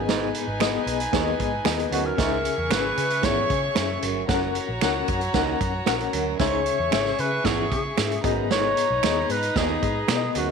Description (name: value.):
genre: uptempo 1960s-style soul.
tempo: 114 BPM.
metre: 4/4.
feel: straight.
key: G# minor.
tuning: A4 = 440 Hz.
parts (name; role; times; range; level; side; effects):
warm studio violin section; second line; 0.0-10.5 s; D#4 to C#6; -30 LUFS; equal; none.
reed electric piano; accompaniment; 0.0-10.5 s; G#2 to F#5; -28 LUFS; left 15 dB; fast tremolo.
warm baritone saxophone; riff; 0.0-10.5 s; D#2 to G#2; -30 LUFS; right 14 dB; none.
vintage muted picked electric bass; bass; 0.0-10.5 s; F#1 to C#3; -32 LUFS; equal; none.
vintage drum kit; drums; 0.1-10.5 s; hi-hat, kick drum, snare drum; -27 LUFS; right 6 dB; none.
finger snaps; percussion; 0.6-10.2 s; none; -31 LUFS; right 13 dB; none.
mellow alto saxophone; melody; 1.9-10.5 s; F#4 to C#5; -25 LUFS; left 2 dB; none.
room: light reverb, studio reverb.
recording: 1960s-style stereo with parts hard left and right.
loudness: -21 LUFS.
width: side -6 dB against mid.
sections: 0.0-10.5 A section.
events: none.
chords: 0.0 G#m; 2.2 C#m; 4.3 F#; 6.4 C#m; 8.2 G#m.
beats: | 0.09 0.61 1.14 1.66 | 2.19 2.71 3.24 3.76 | 4.29 4.81 5.34 5.87 | 6.39 6.92 7.45 7.98 | 8.51 9.03 9.56 10.09.